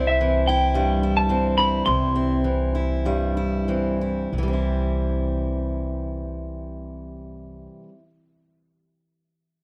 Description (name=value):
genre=indie folk with a building arrangement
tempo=89-112 BPM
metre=4/4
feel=straight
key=C major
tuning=A4 = 438 Hz
part: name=electric guitar through a small old amp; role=melody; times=0.0-3.6 s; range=E5 to C6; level=-24 LUFS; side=equal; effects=tremolo
part: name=fingerpicked steel-string acoustic guitar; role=accompaniment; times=0.0-8.0 s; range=G2 to E4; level=-27 LUFS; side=equal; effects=none
part: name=upright bass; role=bass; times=0.0-7.7 s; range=C2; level=-29 LUFS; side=equal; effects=none
room=light reverb, small room reverb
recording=none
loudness=-23 LUFS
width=mono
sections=0.0-4.3 A section; 4.3-9.6 B section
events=slowing down 0.0-4.3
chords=0.0 C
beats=0.20 0.74 1.29 | 1.86 2.44 3.05 3.67 | 4.33 5.00 5.67 6.34 | 7.01 7.69